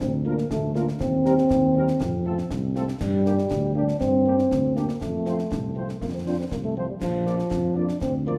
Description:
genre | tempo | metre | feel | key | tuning
military-style march for wind band | 120 BPM | 2/4 | straight | Bb major | A4 = 440 Hz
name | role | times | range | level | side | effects
mellow euphonium | second line | 0.0-8.4 s | F3 to D4 | -27 LUFS | equal | none
dark tuba | bass | 0.0-8.4 s | Bb1 to G2 | -29 LUFS | equal | none
concert snare drum, concert bass drum and clash cymbals | drums | 0.0-8.2 s | none | -36 LUFS | equal | none
warm trumpet section | melody | 0.3-8.4 s | G4 to D5 | -45 LUFS | equal | none
mellow French horn section | accompaniment | 0.3-8.4 s | F3 to G4 | -36 LUFS | equal | none
room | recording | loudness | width
wet recital hall reverb, RT60 1.4 s | lossy compression artefacts | -24 LUFS | mono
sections
0.0-8.4 A section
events
none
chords
0.0 Bb/D; 1.0 Cm/Eb; 2.0 F; 3.0 Gm; 5.0 F; 7.0 Bb

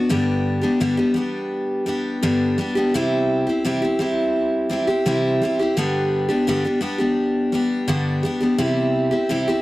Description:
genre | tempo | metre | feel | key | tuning
rock | 85 BPM | 4/4 | straight | unclear | A4 = 439 Hz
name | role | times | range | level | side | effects
picked steel-string acoustic guitar | solo | 0.0-9.6 s | G2 to G4 | -18 LUFS | equal | none
room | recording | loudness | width
light reverb | dry, close 1970s-style studio recording | -18 LUFS | side -18 dB against mid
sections
0.1-9.6 A section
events
none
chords
0.1 G; 2.9 C; 5.8 G; 8.6 C

